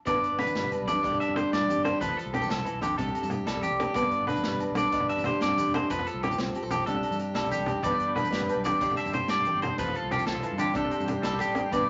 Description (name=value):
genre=highlife guitar band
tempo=124 BPM (dotted quarters)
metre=12/8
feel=straight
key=unclear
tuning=A4 = 441 Hz
part: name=picked acoustic archtop guitar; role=accompaniment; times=0.1-11.9 s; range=G2 to B4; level=-33 LUFS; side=equal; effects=none
part: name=electric guitar at the edge of break-up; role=arpeggios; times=0.1-11.9 s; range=G4 to E5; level=-31 LUFS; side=equal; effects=none
part: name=fingered electric bass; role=bass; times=0.1-11.9 s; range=E1 to G2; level=-40 LUFS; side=equal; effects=none
part: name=crunchy breakbeat drum kit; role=drums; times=0.1-11.8 s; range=hi-hat, kick drum, snare drum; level=-41 LUFS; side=equal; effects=none
part: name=agogo bells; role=percussion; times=0.1-11.9 s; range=none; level=-42 LUFS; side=equal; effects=none
part: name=congas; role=percussion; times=0.1-11.9 s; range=none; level=-37 LUFS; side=equal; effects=none
part: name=maracas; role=percussion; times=0.1-11.8 s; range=none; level=-53 LUFS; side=equal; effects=none
part: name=tonewheel organ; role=sustained chords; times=7.9-11.9 s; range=D5 to C6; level=-42 LUFS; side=equal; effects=slow rotary speaker, chorus vibrato
room=wet studio reverb, RT60 0.9 s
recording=nothing above 7.7 kHz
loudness=-28 LUFS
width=mono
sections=0.1-11.9 A section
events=none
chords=0.1 G; 1.0 Csus2/G; 2.0 F; 3.0 C5; 4.0 G; 4.9 Csus2/G; 5.9 F; 6.9 Csus2; 7.8 G; 8.8 Csus2/G; 9.8 F; 10.8 Csus2